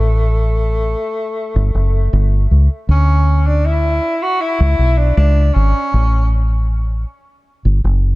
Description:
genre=reggae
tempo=79 BPM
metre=4/4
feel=straight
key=unclear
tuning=A4 = 442 Hz
part: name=warm tenor saxophone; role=melody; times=0.0-6.3 s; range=A3 to F#4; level=-20 LUFS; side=equal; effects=tape echo
part: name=deep dub fingered electric bass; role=bass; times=0.0-8.2 s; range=F#1 to D2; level=-12 LUFS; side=equal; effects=none
room=studio reverb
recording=echo-heavy mix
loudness=-13 LUFS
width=side -20 dB against mid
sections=0.0-8.2 A section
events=none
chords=0.0 N.C.; 1.4 F#m; 2.9 E7(no3); 5.9 A; 7.5 F#5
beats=0.59 1.35 2.12 | 2.88 3.64 4.40 5.17 | 5.93 6.69 7.45

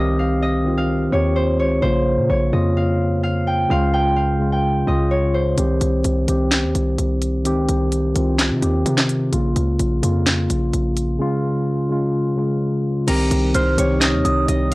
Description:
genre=hip hop, trap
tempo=128 BPM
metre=4/4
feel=half-time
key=C phrygian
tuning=A4 = 440 Hz
part: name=Celtic harp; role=melody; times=0.0-7.3, 13.1-14.7 s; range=Bb4 to G5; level=-23 LUFS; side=equal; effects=none
part: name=mellow tine electric piano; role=accompaniment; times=0.0-14.7 s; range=Db3 to G4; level=-20 LUFS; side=equal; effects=analog chorus
part: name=hard-hitting 808-style bass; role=bass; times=0.0-14.7 s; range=Bb1 to C3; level=-21 LUFS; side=equal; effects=none
part: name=trap drum kit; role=drums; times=5.6-14.7 s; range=crash cymbal, handclaps, hi-hat, snare drum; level=-21 LUFS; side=equal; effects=none
part: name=dark analog pad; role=sustained chords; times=13.1-14.7 s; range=C3 to Eb4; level=-26 LUFS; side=right 2 dB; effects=chorus
part: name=glassy synth bell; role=second line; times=13.5-14.7 s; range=Eb6 to F6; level=-24 LUFS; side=right 3 dB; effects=chorus, analog delay
room=little or no reverb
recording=dry, gritty hardware recording, transformer saturation, cassette tape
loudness=-16 LUFS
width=side -21 dB against mid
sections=0.0-13.1 A section; 13.1-14.7 B section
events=none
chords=0.0 Cm; 1.8 Bbm; 3.7 Db; 5.6 Cm; 9.3 Bbm; 11.2 Db; 13.1 Cm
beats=0.42 0.89 1.36 | 1.83 2.30 2.76 3.23 | 3.70 4.17 4.64 5.11 | 5.58 6.05 6.51 6.98 | 7.45 7.92 8.39 8.86 | 9.33 9.80 10.26 10.73 | 11.20 11.67 12.14 12.61 | 13.08 13.55 14.01 14.48

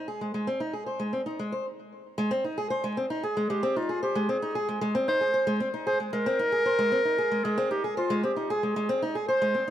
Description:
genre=folktronica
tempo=114 BPM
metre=4/4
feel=straight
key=Ab major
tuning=A4 = 445 Hz
part: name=fingerpicked acoustic archtop guitar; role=arpeggios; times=0.0-9.7 s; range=Ab3 to C5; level=-28 LUFS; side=equal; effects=ping-pong delay
part: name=warm clarinet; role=melody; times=3.2-9.7 s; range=F4 to C5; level=-27 LUFS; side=equal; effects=ping-pong delay
room=moderate echo chamber reverb, RT60 2.5 s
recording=vinyl crackle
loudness=-25 LUFS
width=side -11 dB against mid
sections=0.0-2.2 A section; 2.2-9.7 B section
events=stop 1.7-2.2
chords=0.0 Ab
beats=| 0.08 0.60 1.13 1.66 | 2.18 2.71 3.24 3.76 | 4.29 4.82 5.34 5.87 | 6.39 6.92 7.45 7.97 | 8.50 9.03 9.55

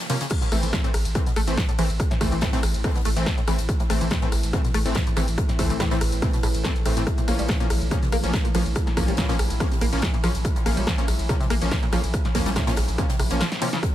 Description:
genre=driving peak-time techno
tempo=142 BPM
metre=4/4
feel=straight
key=unclear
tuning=A4 = 440 Hz
part: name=open jazz drum kit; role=drums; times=0.0-13.9 s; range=hi-hat, snare drum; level=-39 LUFS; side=left 3 dB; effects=sidechain pumping on hats, high-pass filter on hats, high-pass filter on snare, high-pass filter on room
part: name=punchy analog drum machine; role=drums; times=0.0-13.9 s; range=crash cymbal, hi-hat, ride cymbal, rim click, snare drum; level=-29 LUFS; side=equal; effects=sidechain pumping on hats, sidechain pumping on cymbals
part: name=tight sequenced synth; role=riff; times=0.1-13.8 s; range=A2 to Bb3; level=-30 LUFS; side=equal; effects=chorus, cassette tape, sidechain pumping, tape echo
part: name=supersaw stab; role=stabs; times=0.1-13.7 s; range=E3 to Db4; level=-30 LUFS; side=left 1 dB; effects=sidechain pumping, tape echo
part: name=analog drone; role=drone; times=1.5-13.9 s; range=A2 to E3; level=-33 LUFS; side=equal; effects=chorus, sidechain pumping
part: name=electronic kick drum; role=drums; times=0.3-13.9 s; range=none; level=-24 LUFS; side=equal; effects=none
part: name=saturated sub bass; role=bass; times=0.5-13.4 s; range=A1 to Bb1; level=-26 LUFS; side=equal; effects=overdrive, sidechain pumping, low-pass filter
room=little or no reverb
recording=none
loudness=-20 LUFS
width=side -13 dB against mid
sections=0.3-13.9 A section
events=break 0.0-0.3; drop 0.3-13.9; kick drops out 13.4-13.8; drum fill 13.5-13.8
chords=0.3 Am; 7.1 Bbm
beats=| 0.31 0.73 1.15 1.57 | 2.00 2.42 2.84 3.26 | 3.69 4.11 4.53 4.96 | 5.38 5.80 6.22 6.64 | 7.07 7.49 7.91 8.34 | 8.76 9.18 9.60 10.03 | 10.45 10.87 11.29 11.71 | 12.14 12.56 12.98 13.40 | 13.83

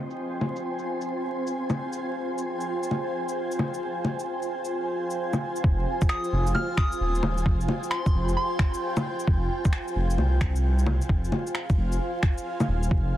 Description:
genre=future garage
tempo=132 BPM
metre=4/4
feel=swing 66% on 16ths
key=F minor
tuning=A4 = 440 Hz
part: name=granular cloud pad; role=sustained chords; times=0.0-13.2 s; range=Eb4 to Ab5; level=-30 LUFS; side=right 1 dB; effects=built-in reverb, sidechain pumping
part: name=wind-like tuned noise texture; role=texture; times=0.0-5.7 s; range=C4 to C5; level=-36 LUFS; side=equal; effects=built-in reverb
part: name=electronic shaker, bongos and finger snaps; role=drums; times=0.1-12.9 s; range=none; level=-29 LUFS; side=left 1 dB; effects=overdrive, soft clipping on snare, low-pass filter on snare, low-pass filter on perc, low-pass filter on room
part: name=dark detuned saw bass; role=bass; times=5.6-13.1 s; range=Eb1 to C2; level=-25 LUFS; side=equal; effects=sidechain pumping
part: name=electronic kick drum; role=drums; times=5.6-13.0 s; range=none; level=-22 LUFS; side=equal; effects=none
part: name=soft synth bell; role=melody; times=6.1-9.0 s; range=C6 to F6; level=-31 LUFS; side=equal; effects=chorus, tape echo
room=light reverb, digital ambience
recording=dense, heavily limited modern master, vinyl crackle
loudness=-24 LUFS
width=side -13 dB against mid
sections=0.0-5.6 A section; 5.6-13.2 B section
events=filter sweep on drum 0.0-5.6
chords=0.0 Fm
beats=| 0.18 0.64 1.09 1.55 | 2.00 2.46 2.91 3.37 | 3.82 4.27 4.73 5.18 | 5.64 6.09 6.55 7.00 | 7.46 7.91 8.37 8.82 | 9.27 9.73 10.18 10.64 | 11.09 11.55 12.00 12.46 | 12.91

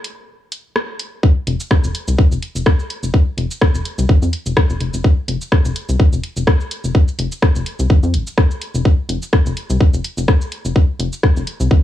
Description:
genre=minimal techno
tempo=126 BPM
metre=4/4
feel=swing 55% on 16ths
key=F minor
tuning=A4 = 439 Hz
part: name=garage drum kit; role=drums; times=0.0-11.7 s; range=hi-hat, rim click, shaker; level=-23 LUFS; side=left 1 dB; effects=cassette tape
part: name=electronic kick drum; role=drums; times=1.2-11.8 s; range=none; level=-12 LUFS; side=equal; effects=cassette tape
part: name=rubbery square bass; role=bass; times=1.5-11.8 s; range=F1 to F2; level=-18 LUFS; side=left 1 dB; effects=sidechain pumping
room=little or no reverb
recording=home recording on cassette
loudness=-14 LUFS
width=side -12 dB against mid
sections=0.0-11.8 A section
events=break 0.0-1.2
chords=none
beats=0.28 0.76 | 1.23 1.71 2.19 2.66 | 3.14 3.62 4.09 4.57 | 5.04 5.52 6.00 6.47 | 6.95 7.42 7.90 8.38 | 8.85 9.33 9.80 10.28 | 10.76 11.23 11.71

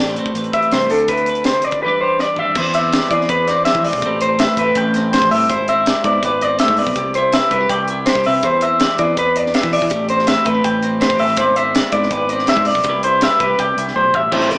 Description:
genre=math rock and midwest emo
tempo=163 BPM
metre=4/4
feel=straight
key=unclear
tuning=A4 = 443 Hz
part: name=twelve-string electric guitar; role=accompaniment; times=0.0-14.6 s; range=A2 to E5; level=-21 LUFS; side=right 1 dB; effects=none
part: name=electric guitar through a small old amp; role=arpeggios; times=0.0-14.6 s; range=A4 to G5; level=-15 LUFS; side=equal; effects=none
part: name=growling fingered electric bass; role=bass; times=0.0-14.6 s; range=G#1 to E3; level=-25 LUFS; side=equal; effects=overdrive
part: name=crisp fusion drum kit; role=drums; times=0.1-14.6 s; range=crash cymbal, hi-hat, kick drum, snare drum, toms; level=-21 LUFS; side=equal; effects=none
part: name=crunchy overdriven guitar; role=riff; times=14.3-14.5 s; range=E3 to E4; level=-16 LUFS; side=equal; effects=none
room=moderate stone room reverb, RT60 1.2 s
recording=band playing live in one room, small speaker sound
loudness=-13 LUFS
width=side -26 dB against mid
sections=0.0-2.6 A section; 2.6-14.3 B section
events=drum fill 2.2-2.6, 14.0-14.3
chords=0.0 Am9; 0.9 Dsus2; 1.8 Em7; 2.6 E7b9b13; 4.0 Am11; 5.5 E7b13/G#; 7.0 Cmaj9; 8.4 E7b13; 9.9 Am11; 11.4 E7b13/G#; 12.9 Cmaj9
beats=0.35 0.72 | 1.09 1.46 1.82 2.19 | 2.56 2.93 3.30 3.66 | 4.03 4.40 4.77 5.13 | 5.50 5.87 6.24 6.60 | 6.97 7.34 7.71 8.07 | 8.44 8.81 9.18 9.54 | 9.91 10.28 10.65 11.01 | 11.38 11.75 12.12 12.48 | 12.85 13.22 13.59 13.96 | 14.32

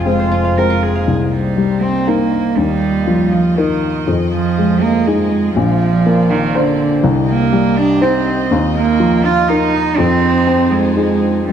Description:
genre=neoclassical piano and strings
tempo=121 BPM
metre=3/4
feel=rubato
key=unclear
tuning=A4 = 438 Hz
part: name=warm upright piano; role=accompaniment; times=0.0-11.5 s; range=Bb1 to Ab5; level=-15 LUFS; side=left 3 dB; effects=none
part: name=dark chamber string section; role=sustained chords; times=0.0-11.5 s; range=Bb3 to Eb5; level=-25 LUFS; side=equal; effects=none
part: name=Celtic harp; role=arpeggios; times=0.0-2.6 s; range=F4 to F5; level=-27 LUFS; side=left 3 dB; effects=tape echo
part: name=dark double bass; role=bass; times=0.0-1.1 s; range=F1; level=-21 LUFS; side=equal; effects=none
part: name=warm cello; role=second line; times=0.1-11.5 s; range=D3 to Bb4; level=-16 LUFS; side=right 6 dB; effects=tape echo
room=wet studio reverb, RT60 0.5 s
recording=dark, warm production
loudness=-12 LUFS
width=side -8 dB against mid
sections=0.0-1.1 A section; 1.1-11.5 B section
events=none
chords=0.0 Fm; 1.1 Cm7; 2.6 Ebsus2; 4.1 Fm7; 5.6 Bbadd9; 7.0 Cm7; 8.5 Ebsus2; 10.0 Fm7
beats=0.06 0.57 | 1.08 1.58 2.08 | 2.58 3.08 3.58 | 4.07 4.57 5.07 | 5.56 6.06 6.54 | 7.04 7.53 8.02 | 8.51 9.01 9.49 | 9.98 10.47 10.97 | 11.48

